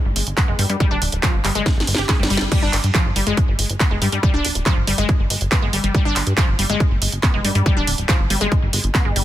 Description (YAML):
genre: psychedelic trance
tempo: 140 BPM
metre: 4/4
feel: straight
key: unclear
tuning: A4 = 440 Hz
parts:
  - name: plucky analog bass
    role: bass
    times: 0.1-9.2 s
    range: D1 to G2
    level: -21 LUFS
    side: equal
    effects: tube saturation
  - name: techno drum kit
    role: drums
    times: 0.2-9.2 s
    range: crash cymbal, handclaps, hi-hat, snare drum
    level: -22 LUFS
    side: right 1 dB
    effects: overdrive
  - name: wide unison pluck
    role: riff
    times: 0.4-9.2 s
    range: F3 to Ab4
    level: -23 LUFS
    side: left 1 dB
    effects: auto-pan, sidechain pumping, tape echo
  - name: electronic kick drum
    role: drums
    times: 0.4-9.0 s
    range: none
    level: -19 LUFS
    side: equal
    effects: none
room: little or no reverb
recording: dense, heavily limited modern master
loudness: -16 LUFS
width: side -13 dB against mid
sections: 0.0-2.5 A section; 2.5-9.2 B section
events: drum fill 1.7-2.5; band accent 2.4; drop 2.5-9.2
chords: 0.0 G5